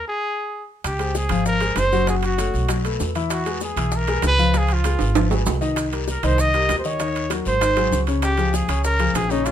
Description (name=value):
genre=Afro-Cuban jazz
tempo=195 BPM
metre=4/4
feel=straight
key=unclear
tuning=A4 = 440 Hz
part: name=warm trumpet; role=melody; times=0.0-9.5 s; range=Eb4 to Eb5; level=-23 LUFS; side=right 1 dB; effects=none
part: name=upright bass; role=bass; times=0.8-9.5 s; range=Gb1 to Fb2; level=-23 LUFS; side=right 1 dB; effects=none
part: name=bongos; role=percussion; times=0.8-9.5 s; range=none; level=-32 LUFS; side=left 5 dB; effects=none
part: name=guiro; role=percussion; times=0.8-9.5 s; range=none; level=-36 LUFS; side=left 5 dB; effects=none
part: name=timbales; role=percussion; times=0.8-9.5 s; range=none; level=-28 LUFS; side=right 10 dB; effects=none
part: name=maracas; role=percussion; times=0.9-9.5 s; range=none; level=-35 LUFS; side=right 3 dB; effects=none
part: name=warm grand piano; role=accompaniment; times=1.0-9.5 s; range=Db3 to Gb5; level=-24 LUFS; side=left 4 dB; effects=none
room=light reverb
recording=minimal, uncompressed stereo recording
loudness=-18 LUFS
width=side -10 dB against mid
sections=0.8-9.5 A section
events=stop 0.0-0.8; drum fill 5.0-5.8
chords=0.2 N.C.; 0.8 Dbmaj7#11; 2.1 Gbm; 2.7 B5; 3.3 Eadd9; 4.5 Db9; 5.8 Cm7; 7.0 Ebm7; 7.6 Ab7; 8.2 Db